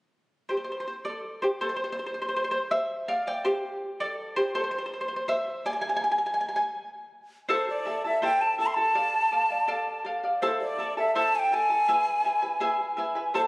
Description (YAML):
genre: andean folk, Andean ensemble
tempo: 82 BPM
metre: 2/4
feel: straight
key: unclear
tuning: A4 = 442 Hz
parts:
  - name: charango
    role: accompaniment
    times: 0.5-13.5 s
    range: E4 to A5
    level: -27 LUFS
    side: equal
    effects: none
  - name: quena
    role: melody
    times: 7.5-13.4 s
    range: C5 to C6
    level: -24 LUFS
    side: equal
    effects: none
room: moderate scoring stage reverb, RT60 1.7 s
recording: recorded on a phone in the room, studio reverb, compression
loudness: -25 LUFS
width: side -23 dB against mid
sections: 0.1-1.6 A section; 1.6-7.5 B section; 7.5-13.5 C section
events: charango solo 1.6-7.5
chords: 0.1 Gsus4 (rootless); 1.6 N.C.; 3.1 D5; 4.5 Caug; 6.0 N.C.; 7.5 Am; 8.9 Dm; 10.4 Am; 11.9 E